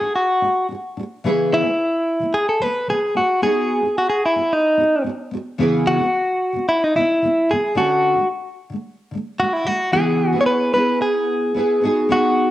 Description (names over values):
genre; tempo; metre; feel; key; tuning
pop; 110 BPM; 4/4; straight; E major; A4 = 440 Hz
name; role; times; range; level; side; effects
direct-recorded clean electric guitar; melody; 0.0-12.5 s; D#4 to C#5; -17 LUFS; equal; cassette tape
nylon-string guitar; accompaniment; 0.0-12.5 s; C#3 to B4; -21 LUFS; equal; double-tracked left and right, cassette tape
room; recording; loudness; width
moderate spring reverb, RT60 1.1 s, small room ambience; home recording on cassette; -16 LUFS; side -14 dB against mid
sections
0.0-9.9 A section; 9.9-12.5 B section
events
none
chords
0.0 D; 1.2 E6; 3.1 B6; 5.6 E6; 7.8 Dmaj7; 9.9 E6; 11.8 B6